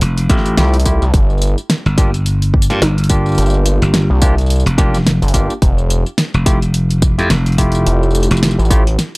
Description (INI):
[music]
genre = glitch hop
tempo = 107 BPM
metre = 4/4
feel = swing 58% on 16ths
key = G dorian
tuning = A4 = 436 Hz
[part]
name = glassy slap bass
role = bass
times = 0.0-8.6 s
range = F1 to G2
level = -14 LUFS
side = equal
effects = tube saturation
[part]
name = pop drum kit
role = drums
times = 0.0-9.2 s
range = hi-hat, snare drum, tambourine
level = -19 LUFS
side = equal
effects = none
[part]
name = barky tine electric piano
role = stabs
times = 0.3-8.8 s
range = A3 to G4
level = -20 LUFS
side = equal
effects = sidechain pumping, analog delay
[part]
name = electronic kick drum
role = drums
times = 0.3-8.8 s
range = none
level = -14 LUFS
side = equal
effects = none
[part]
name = gritty driven synth bass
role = bass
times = 0.6-9.0 s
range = F1 to C2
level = -13 LUFS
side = equal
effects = overdrive
[sound]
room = little or no reverb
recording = dry, gritty hardware recording, transformer saturation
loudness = -11 LUFS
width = side -26 dB against mid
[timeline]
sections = 0.0-9.2 A section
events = drum fill 9.0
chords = 0.0 Fmaj9; 1.1 Gm7; 5.6 Fmaj9